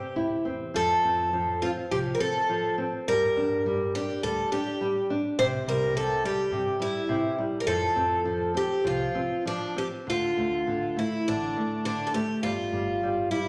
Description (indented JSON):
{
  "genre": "fado-style ballad",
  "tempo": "103 BPM",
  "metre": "4/4",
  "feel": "rubato",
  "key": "F major, D minor from 10.1 s",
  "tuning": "A4 = 440 Hz",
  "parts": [
    { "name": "picked twelve-string acoustic guitar", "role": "melody", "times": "0.0-13.5 s", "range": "D4 to C5", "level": "-29 LUFS", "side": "equal", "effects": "none" },
    { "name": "nylon-string guitar", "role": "accompaniment", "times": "0.0-13.5 s", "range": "C3 to E4", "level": "-33 LUFS", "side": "equal", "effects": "none" },
    { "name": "upright bass", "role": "bass", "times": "0.2-13.3 s", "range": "G1 to G2", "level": "-40 LUFS", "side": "equal", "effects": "none" }
  ],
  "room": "wet large studio reverb, RT60 1.4 s",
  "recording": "none",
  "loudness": "-27 LUFS",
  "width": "mono",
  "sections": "0.0-10.1 A section; 10.1-13.5 B section",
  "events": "none",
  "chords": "0.0 C; 0.8 F; 3.1 Gm; 5.4 C; 7.7 F; 10.1 Dm; 12.4 G5"
}